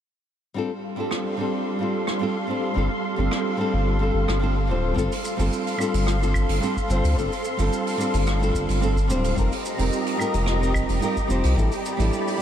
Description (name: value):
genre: sunset chillout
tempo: 109 BPM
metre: 4/4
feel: straight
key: G minor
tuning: A4 = 439 Hz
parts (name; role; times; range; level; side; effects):
- nylon-string guitar; accompaniment; 0.5-12.4 s; G3 to C5; -26 LUFS; moving between left 4 dB and right 4 dB; auto-pan, diffuse ambient delay
- soft string machine; sustained chords; 0.6-12.4 s; G3 to C6; -28 LUFS; equal; ensemble chorus
- jazz brush drum kit; drums; 1.1-12.4 s; claves, hi-hat, rim click, shaker; -33 LUFS; right 1 dB; none
- round analog bass; bass; 2.8-12.1 s; D1 to D2; -23 LUFS; equal; none
- electronic kick drum; drums; 5.0-11.7 s; none; -29 LUFS; equal; none
room: moderate huge ambient reverb, RT60 6.9 s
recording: dreamy mix soaked in reverb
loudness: -21 LUFS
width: side -10 dB against mid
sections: 0.6-5.0 A section; 5.0-12.4 B section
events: none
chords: 0.6 G9sus4; 9.4 F9sus4; 11.6 A9sus4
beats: | 0.56 1.11 1.67 2.21 | 2.77 3.32 3.87 4.42 | 4.97 5.52 6.07 6.62 | 7.17 7.72 8.27 8.82 | 9.37 9.92 10.47 11.02 | 11.57 12.12